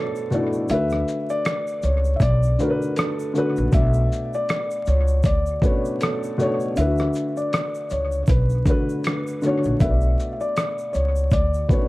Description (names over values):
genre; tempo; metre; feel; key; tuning
lo-fi hip hop; 79 BPM; 4/4; swing 59% on 16ths; B minor; A4 = 440 Hz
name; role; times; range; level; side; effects
felt-muted upright piano; melody; 0.0-11.9 s; A4 to E5; -26 LUFS; left 1 dB; analog delay
dark upright piano; accompaniment; 0.0-11.9 s; B2 to D5; -25 LUFS; left 1 dB; none
tube shaker; percussion; 0.2-11.7 s; none; -50 LUFS; right 6 dB; none
dusty soul sampler-style drum kit; drums; 0.3-11.9 s; hi-hat, kick drum, rim click, shaker; -22 LUFS; equal; overdrive
upright bass; bass; 0.7-11.6 s; A#1 to D2; -21 LUFS; equal; none
room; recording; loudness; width
light reverb, small room ambience; echo-heavy mix, vinyl crackle; -19 LUFS; side -19 dB against mid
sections
0.0-11.9 A section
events
none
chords
0.0 Bm9; 0.7 D6; 3.7 Bm9; 6.8 D6; 9.8 Bm9